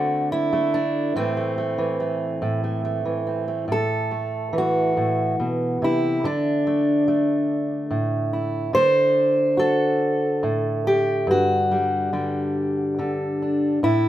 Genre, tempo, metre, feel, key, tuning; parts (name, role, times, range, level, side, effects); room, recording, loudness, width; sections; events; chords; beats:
folk, solo fingerstyle acoustic guitar; 47 BPM (dotted quarters); 6/8; rubato; A dorian; A4 = 440 Hz
fingerpicked steel-string acoustic guitar; solo; 0.0-14.1 s; G2 to C5; -20 LUFS; equal
moderate studio reverb, RT60 0.6 s; minimal, uncompressed stereo recording; -20 LUFS; side -13 dB against mid
0.0-3.7 A section; 3.7-14.1 A section
0.0 D7; 1.2 Am; 6.2 Dsus2; 8.7 D7; 11.3 Gsus2
| 1.15 2.43 | 3.71 4.99 | 6.25 7.50 | 8.74 10.00 | 11.27 12.55 | 13.83